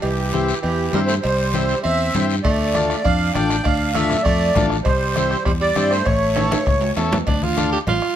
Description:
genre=latin, cumbia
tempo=199 BPM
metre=4/4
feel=straight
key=D minor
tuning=A4 = 440 Hz
part: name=accordion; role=melody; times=0.0-6.9 s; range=G4 to G5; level=-21 LUFS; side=right 2 dB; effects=light tremolo tuning
part: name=breathy tenor saxophone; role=second line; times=0.0-8.2 s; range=E3 to G4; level=-25 LUFS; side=right 3 dB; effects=none
part: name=fingered electric bass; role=bass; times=0.0-8.0 s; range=A1 to G2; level=-22 LUFS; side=equal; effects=none
part: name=congas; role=percussion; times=0.0-8.0 s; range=none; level=-27 LUFS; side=left 3 dB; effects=none
part: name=cowbell and timbales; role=percussion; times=0.0-8.0 s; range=none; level=-31 LUFS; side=right 4 dB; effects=none
part: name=guiro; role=percussion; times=0.0-8.2 s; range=none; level=-32 LUFS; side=left 6 dB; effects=none
part: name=combo organ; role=accompaniment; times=0.3-7.8 s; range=C4 to A4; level=-25 LUFS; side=left 4 dB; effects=none
part: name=bombo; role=percussion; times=2.4-8.2 s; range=none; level=-24 LUFS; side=left 1 dB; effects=none
room=light reverb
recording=none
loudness=-16 LUFS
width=side -10 dB against mid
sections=0.0-7.3 A section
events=drum fill 6.4-7.3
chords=0.0 C; 2.4 Dm; 4.9 C; 6.1 A; 7.3 Dm

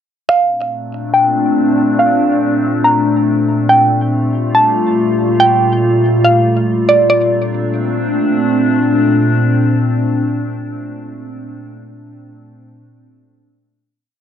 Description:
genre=hip hop, atmospheric cloud-rap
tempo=141 BPM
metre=4/4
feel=half-time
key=Bb major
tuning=A4 = 437 Hz
part: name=mallet-like synth pluck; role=melody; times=0.3-8.3 s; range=D5 to Bb5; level=-14 LUFS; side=right 1 dB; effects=chorus, low-pass filter, tape echo
part: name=glassy FM pad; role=sustained chords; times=0.8-11.3 s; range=Bb2 to F4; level=-14 LUFS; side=left 1 dB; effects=ensemble chorus, built-in reverb, low-pass filter
room=moderate studio reverb, RT60 0.6 s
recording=home recording on cassette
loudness=-11 LUFS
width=side -9 dB against mid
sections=0.3-7.1 breakdown; 7.1-10.5 final chord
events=filter sweep 0.3-7.1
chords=0.3 Bbmaj9; 3.7 Gm9; 7.1 Bbmaj9

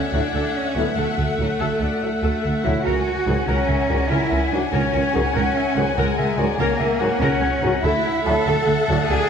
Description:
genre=cinematic, heroic adventure film score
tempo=96 BPM (dotted quarters)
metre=12/8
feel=straight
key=D lydian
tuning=A4 = 440 Hz
part: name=warm symphonic violin section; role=melody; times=0.0-9.3 s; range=F#5 to G#5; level=-29 LUFS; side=left 7 dB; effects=none
part: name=bright clarinet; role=second line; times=0.0-9.3 s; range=C#5 to F#5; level=-31 LUFS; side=left 3 dB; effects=none
part: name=rich studio violin section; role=second line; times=0.0-9.3 s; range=E5 to F#5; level=-31 LUFS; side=left 6 dB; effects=none
part: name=warm oboe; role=second line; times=0.0-9.3 s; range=F#5 to B5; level=-32 LUFS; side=equal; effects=none
part: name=mellow hollow concert flute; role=second line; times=0.1-9.3 s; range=G#4 to A5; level=-29 LUFS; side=left 3 dB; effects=none
part: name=rich symphonic viola section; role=accompaniment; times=0.1-9.3 s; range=F#4 to A#4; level=-28 LUFS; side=left 1 dB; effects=none
part: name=bright trombone section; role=sustained chords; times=0.1-9.0 s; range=G#2 to F#3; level=-30 LUFS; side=right 2 dB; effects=none
part: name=mellow French horn section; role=sustained chords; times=0.1-9.0 s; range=F#4 to E5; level=-30 LUFS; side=left 5 dB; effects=none
part: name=clear studio cello section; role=bass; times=0.1-9.3 s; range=G#3 to A4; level=-24 LUFS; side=right 2 dB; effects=none
part: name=clear symphonic double bass section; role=bass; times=0.1-9.2 s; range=C#2 to D2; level=-23 LUFS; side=right 2 dB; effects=none
room=wet scoring stage reverb, RT60 1.6 s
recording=dark, warm production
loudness=-18 LUFS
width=side -7 dB against mid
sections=0.0-9.3 A section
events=none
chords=0.0 Dadd9; 2.9 F#add9/C#; 7.8 Dadd9

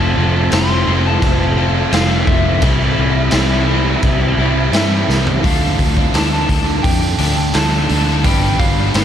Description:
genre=rock, shoegaze and dream pop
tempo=86 BPM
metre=4/4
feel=straight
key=unclear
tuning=A4 = 440 Hz
part: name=soft struck synth lead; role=melody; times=0.0-9.0 s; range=E5 to C6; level=-24 LUFS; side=left 2 dB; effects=chorus, slapback echo
part: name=biting overdriven guitar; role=riff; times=0.0-9.0 s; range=F2 to B4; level=-20 LUFS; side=right 12 dB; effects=reverse reverb
part: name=overdriven electric guitar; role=riff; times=0.0-9.0 s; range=G2 to F4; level=-20 LUFS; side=left 12 dB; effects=lush chorus
part: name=vintage muted fingered electric bass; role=bass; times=0.0-9.0 s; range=F1 to G2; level=-17 LUFS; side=equal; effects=none
part: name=raw garage drum kit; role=drums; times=0.5-9.0 s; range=crash cymbal, hi-hat, kick drum, snare drum, toms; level=-17 LUFS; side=equal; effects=none
room=light reverb, small room ambience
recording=none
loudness=-12 LUFS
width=side -9 dB against mid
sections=0.0-5.4 A section; 5.4-9.0 B section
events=drum fill 5.1-5.4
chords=0.0 F; 2.6 C; 5.4 Dm; 8.2 G7(no3)

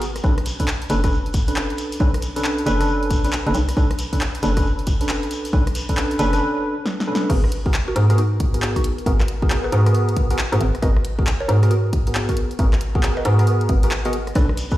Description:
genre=UK garage, two-step garage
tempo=136 BPM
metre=4/4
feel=swing 64% on 16ths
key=unclear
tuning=A4 = 440 Hz
part: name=tine electric piano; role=stabs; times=0.0-14.8 s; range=B3 to B4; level=-24 LUFS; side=equal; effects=analog chorus, tape echo
part: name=hollow knocking FM bass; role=bass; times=0.0-14.8 s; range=F#1 to G#2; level=-21 LUFS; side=equal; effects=sidechain pumping
part: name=punchy analog drum machine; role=drums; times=0.0-14.7 s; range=crash cymbal, handclaps, hi-hat, rim click, snare drum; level=-28 LUFS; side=equal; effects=overdrive
part: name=shekere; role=percussion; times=0.0-6.4, 14.4-14.8 s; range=none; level=-35 LUFS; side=left 1 dB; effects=none
part: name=electronic kick drum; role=drums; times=0.2-14.8 s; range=none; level=-20 LUFS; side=equal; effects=none
part: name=mallet-like synth pluck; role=melody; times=7.3-14.5 s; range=D#4 to F#5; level=-30 LUFS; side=right 1 dB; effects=chorus, phaser, tape echo
room=light reverb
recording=played on a big sound system in a bare room, stone room reverb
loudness=-17 LUFS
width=side -15 dB against mid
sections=0.0-7.3 A section; 7.3-14.8 B section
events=break 6.4-7.3; drum fill 6.9-7.3; drop 7.3-14.8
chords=0.2 Bm9; 7.3 G#m9

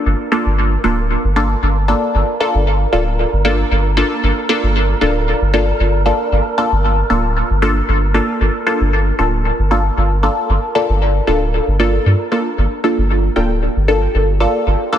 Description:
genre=dub techno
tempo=115 BPM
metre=4/4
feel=swing 53% on 16ths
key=G minor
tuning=A4 = 440 Hz
part: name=filtered dub chord stab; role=stabs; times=0.0-15.0 s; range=Bb3 to A4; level=-16 LUFS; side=equal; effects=chorus, phaser, dub echo
part: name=wind-like tuned noise texture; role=texture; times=0.0-15.0 s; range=G4 to Bb4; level=-27 LUFS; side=right 4 dB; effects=built-in reverb
part: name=soft dub sub bass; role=bass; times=0.1-14.8 s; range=D1 to G2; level=-16 LUFS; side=equal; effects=none
part: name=filtered dub chord stab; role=riff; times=13.4-13.5 s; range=F4 to G5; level=-29 LUFS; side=equal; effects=chorus, dub echo
room=light reverb, digital ambience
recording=dense, heavily limited modern master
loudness=-13 LUFS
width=side -10 dB against mid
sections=0.0-15.0 A section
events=none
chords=0.0 Gm9

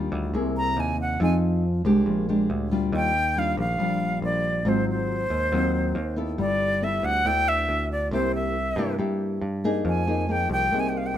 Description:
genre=bossa nova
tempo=139 BPM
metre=4/4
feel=straight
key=Eb major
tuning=A4 = 440 Hz
part: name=nylon-string guitar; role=accompaniment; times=0.0-11.2 s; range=G2 to A4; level=-26 LUFS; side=left 1 dB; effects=none
part: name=picked electric bass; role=bass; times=0.0-11.2 s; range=G1 to G2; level=-28 LUFS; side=right 1 dB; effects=none
part: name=silver concert flute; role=melody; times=0.6-11.2 s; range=C5 to Bb5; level=-25 LUFS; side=equal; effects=none
room=light reverb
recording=band playing live in one room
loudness=-22 LUFS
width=side -10 dB against mid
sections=0.0-2.9 A section; 2.9-11.2 B section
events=flute solo 0.0-2.9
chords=0.3 C7alt; 1.2 Fm7; 2.1 Bb6; 2.9 Ebmaj9; 4.7 Ab6; 6.4 G69; 8.1 C7; 9.8 Fm7

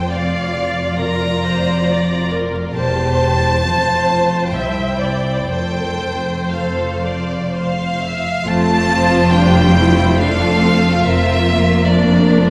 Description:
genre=classical, slow romantic movement for string orchestra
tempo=58-73 BPM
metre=3/4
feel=rubato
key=F major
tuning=A4 = 440 Hz
part: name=warm chamber violin section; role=melody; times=0.0-12.5 s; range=D5 to Bb5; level=-23 LUFS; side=equal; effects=none
part: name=warm symphonic violin section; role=second line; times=0.0-12.5 s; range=E4 to E5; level=-25 LUFS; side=equal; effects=none
part: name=warm studio viola section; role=accompaniment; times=0.0-12.5 s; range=F3 to E5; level=-23 LUFS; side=equal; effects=none
part: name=dark chamber double bass section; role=bass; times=0.0-12.5 s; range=E1 to C2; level=-21 LUFS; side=equal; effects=none
part: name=rich studio cello section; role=bass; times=0.0-12.5 s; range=C2 to F2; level=-24 LUFS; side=equal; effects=none
room=wet concert hall reverb, RT60 2.1 s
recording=recorded in a church or concert hall, vinyl crackle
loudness=-16 LUFS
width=mono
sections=0.0-8.5 A section; 8.5-12.5 A section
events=none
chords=0.1 Bb/F; 2.8 C/E; 3.7 F; 4.5 C; 5.5 F; 11.1 Bb/F

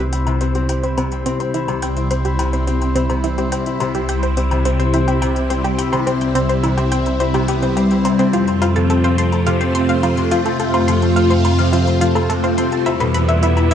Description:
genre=ambient, sequencer-driven space music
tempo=106 BPM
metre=4/4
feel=straight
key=C major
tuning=A4 = 440 Hz
part: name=phased string machine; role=sustained chords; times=0.0-13.7 s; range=G3 to F4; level=-21 LUFS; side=right 1 dB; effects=ensemble chorus, phaser
part: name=concert harp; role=arpeggios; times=0.0-13.7 s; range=B2 to C5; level=-20 LUFS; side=left 3 dB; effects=auto-pan, ping-pong delay
part: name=analog pluck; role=riff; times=0.0-13.7 s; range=C4 to C6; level=-22 LUFS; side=equal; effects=chorus, ping-pong delay
part: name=fat analog bass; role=bass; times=0.0-13.7 s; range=C2 to F2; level=-20 LUFS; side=right 1 dB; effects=none
part: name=electronic hi-hat and woodblock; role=percussion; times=0.1-13.7 s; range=none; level=-30 LUFS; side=left 4 dB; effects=ping-pong delay
room=moderate plate reverb, RT60 3.1 s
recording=dreamy mix soaked in reverb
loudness=-15 LUFS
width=side -9 dB against mid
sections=0.0-13.7 A section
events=fade-in on string machine 0.0-13.7; filter sweep on synth arpeggio sound 0.0-13.7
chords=0.0 C; 8.3 F; 12.9 Em

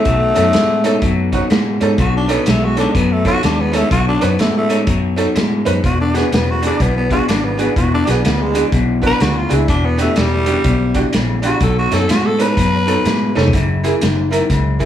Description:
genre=electric blues shuffle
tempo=125 BPM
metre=4/4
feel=swing 63% on 8ths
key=unclear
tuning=A4 = 439 Hz
part: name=growling tenor saxophone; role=melody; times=0.0-13.5 s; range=G3 to B4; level=-18 LUFS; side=equal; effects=none
part: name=electric guitar through a small old amp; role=riff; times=0.0-14.9 s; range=E2 to G#3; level=-19 LUFS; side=left 3 dB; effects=none
part: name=vintage muted fingered electric bass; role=bass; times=0.1-14.9 s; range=E1 to A2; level=-19 LUFS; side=equal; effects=none
part: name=vintage drum kit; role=drums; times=0.1-14.9 s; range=hi-hat, kick drum, snare drum, toms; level=-20 LUFS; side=equal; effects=none
part: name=tack piano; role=accompaniment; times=0.3-14.9 s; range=A#3 to B4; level=-21 LUFS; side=right 4 dB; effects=none
room=light reverb, studio ambience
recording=studio reverb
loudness=-13 LUFS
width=side -10 dB against mid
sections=0.0-14.9 A section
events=tenor saxophone solo 0.0-14.9; drum fill 13.3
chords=0.0 B9; 5.8 E9; 9.7 Em7; 11.6 B9; 13.5 F#7

